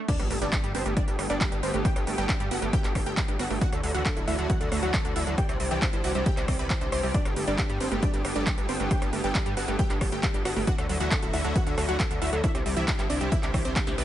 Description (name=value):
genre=uplifting trance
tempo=136 BPM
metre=4/4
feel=straight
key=G major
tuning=A4 = 440 Hz
part: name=wide unison pluck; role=arpeggios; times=0.0-14.0 s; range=E3 to G4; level=-35 LUFS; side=right 5 dB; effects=sidechain pumping, digital delay
part: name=wide unison pluck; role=melody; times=0.1-14.0 s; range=B3 to C6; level=-32 LUFS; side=equal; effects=sidechain pumping, digital delay
part: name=lush unison pad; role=sustained chords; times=0.1-14.0 s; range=D3 to G4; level=-35 LUFS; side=equal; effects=chorus, sidechain pumping
part: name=big-room dance drum kit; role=drums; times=0.1-14.0 s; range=crash cymbal, handclaps, hi-hat, rim click, snare drum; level=-33 LUFS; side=equal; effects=overdrive
part: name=electronic kick drum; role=drums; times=0.1-13.8 s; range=none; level=-28 LUFS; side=equal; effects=overdrive
part: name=impact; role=sound effects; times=0.1-1.8 s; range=none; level=-38 LUFS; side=equal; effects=none
part: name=gritty driven synth bass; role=bass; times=0.2-14.0 s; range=D1 to G2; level=-30 LUFS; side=equal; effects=sidechain pumping
room=digital ambience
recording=nothing above 10.8 kHz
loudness=-24 LUFS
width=side -12 dB against mid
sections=0.1-14.0 A section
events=drop 0.1-14.0; impact 0.1-1.8; drum fill 13.8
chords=0.1 Gadd9; 3.6 Dadd9; 5.4 Cadd9; 7.1 Gadd9; 10.7 Dadd9; 12.4 Cadd9